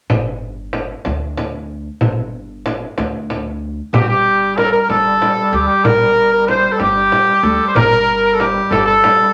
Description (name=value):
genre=Arabic maqam ensemble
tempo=63 BPM (dotted quarters)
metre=6/8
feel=straight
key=G minor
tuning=A4 = 440 Hz
part: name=upright bass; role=bass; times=0.1-9.0 s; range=G1 to D2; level=-28 LUFS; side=equal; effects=none
part: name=frame drum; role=percussion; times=0.1-9.2 s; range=none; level=-22 LUFS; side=equal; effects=none
part: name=bright trumpet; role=second line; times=3.9-9.3 s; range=G4 to C5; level=-17 LUFS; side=equal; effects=none
part: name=mellow duduk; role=drone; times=3.9-9.3 s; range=G3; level=-25 LUFS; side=equal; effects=none
part: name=accordion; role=melody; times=4.0-9.3 s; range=F#4 to C5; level=-17 LUFS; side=equal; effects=none
room=wet small room reverb, RT60 0.5 s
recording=none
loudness=-15 LUFS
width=mono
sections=0.1-3.9 A section; 3.9-9.3 B section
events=none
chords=none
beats=| 0.10 1.06 | 2.02 2.97 | 3.93 4.89 | 5.84 6.80 | 7.76 8.72